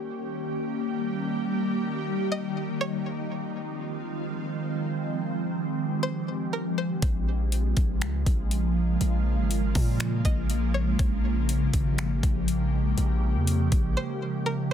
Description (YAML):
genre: hip hop, atmospheric cloud-rap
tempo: 121 BPM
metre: 4/4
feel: half-time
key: Bb dorian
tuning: A4 = 436 Hz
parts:
  - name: ethereal airy pad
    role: sustained chords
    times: 0.0-14.7 s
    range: Db3 to G4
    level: -28 LUFS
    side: equal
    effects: ensemble chorus, built-in reverb, phaser, sidechain pumping
  - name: string-like resonator pluck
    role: melody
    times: 2.3-3.0, 6.0-7.0, 10.3-11.0, 14.0-14.7 s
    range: Bb4 to Eb5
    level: -32 LUFS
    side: equal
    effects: chorus, ping-pong delay
  - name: long sustained 808-style bass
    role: bass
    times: 7.0-14.0 s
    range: Ab1 to Bb2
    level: -26 LUFS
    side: equal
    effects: none
  - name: trap drum kit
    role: drums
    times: 7.0-13.8 s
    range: finger snaps, hi-hat, kick drum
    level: -27 LUFS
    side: equal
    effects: soft clipping on snare
room: moderate studio reverb, RT60 0.5 s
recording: dense, heavily limited modern master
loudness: -24 LUFS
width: side -9 dB against mid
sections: 0.0-14.7 A section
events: break 14.0-14.7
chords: 0.0 Eb7; 3.1 Fm7; 7.0 Bbm7